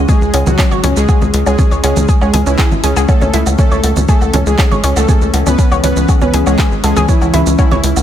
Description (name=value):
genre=melodic techno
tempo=120 BPM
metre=4/4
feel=straight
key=unclear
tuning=A4 = 440 Hz
part: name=evolving wavetable pad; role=sustained chords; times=0.0-8.0 s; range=C#3 to D#5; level=-21 LUFS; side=left 2 dB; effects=chorus, built-in reverb, sidechain pumping
part: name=tight sequencer bass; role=bass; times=0.0-8.0 s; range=G#1 to C#2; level=-15 LUFS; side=equal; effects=sidechain pumping
part: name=soft supersaw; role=melody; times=0.1-7.9 s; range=C#3 to B4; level=-18 LUFS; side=equal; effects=sidechain pumping, analog delay
part: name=analog pluck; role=arpeggios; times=0.1-7.8 s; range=C#4 to C#5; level=-19 LUFS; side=equal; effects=chorus, sidechain pumping, dub echo
part: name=deep house drum kit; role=drums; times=0.1-8.0 s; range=congas, handclaps, hi-hat, shaker, woodblock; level=-19 LUFS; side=right 2 dB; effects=dub echo
part: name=electronic kick drum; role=drums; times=0.1-7.7 s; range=none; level=-11 LUFS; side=equal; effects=none
room=light reverb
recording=echo-heavy mix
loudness=-9 LUFS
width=side -10 dB against mid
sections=0.0-8.0 A section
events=none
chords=0.0 C#5; 3.1 A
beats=0.09 0.59 | 1.09 1.59 2.09 2.59 | 3.09 3.59 4.09 4.59 | 5.09 5.59 6.09 6.59 | 7.09 7.59